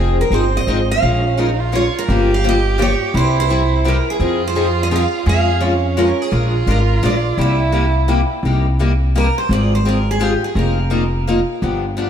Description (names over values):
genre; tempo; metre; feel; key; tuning
acoustic string swing (jazz manouche); 170 BPM; 3/4; swing 62% on 8ths; F minor, C minor from 8.4 s; A4 = 440 Hz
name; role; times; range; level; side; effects
picked steel-string acoustic guitar; melody; 0.0-11.6 s; G4 to F5; -22 LUFS; right 2 dB; lush chorus, tape echo
warm violin; second line; 0.0-8.3 s; C4 to Ab4; -22 LUFS; right 6 dB; tape echo
picked steel-string acoustic guitar; accompaniment; 0.0-12.1 s; C3 to Db5; -20 LUFS; left 3 dB; lush chorus
upright bass; bass; 0.0-12.1 s; F1 to F2; -17 LUFS; equal; none
room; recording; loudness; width
moderate plate reverb, RT60 2.5 s; dreamy mix soaked in reverb; -14 LUFS; side -8 dB against mid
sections
0.0-8.4 A section; 8.4-12.1 B section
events
steel-string acoustic guitar solo 8.4-12.1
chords
0.0 Fm7; 1.0 Bbm7; 2.1 Gm7b5; 3.1 C; 4.2 Fm7; 5.3 Db/F; 6.3 Bb7; 7.4 C7; 8.4 Cm7; 9.5 Ab6; 10.6 F7sus4